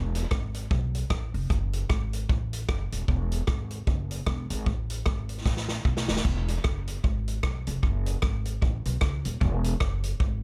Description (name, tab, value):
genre	ska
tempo	152 BPM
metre	4/4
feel	swing 59% on 8ths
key	E major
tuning	A4 = 444 Hz
part	upright bass	bass	0.0-10.4 s	D#1 to C#2	-32 LUFS	equal	none
part	vintage drum kit	drums	0.1-10.3 s	hi-hat, kick drum, rim click, snare drum, splash cymbal	-30 LUFS	equal	tape echo
room	little or no reverb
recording	none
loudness	-28 LUFS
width	mono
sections	0.0-10.4 A section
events	drum fill 5.5-6.3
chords	none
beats	0.31 0.71 1.10 | 1.50 1.90 2.29 2.69 | 3.09 3.48 3.88 4.27 | 4.67 5.07 5.46 5.86 | 6.25 6.65 7.04 7.44 | 7.83 8.23 8.62 9.02 | 9.41 9.81 10.20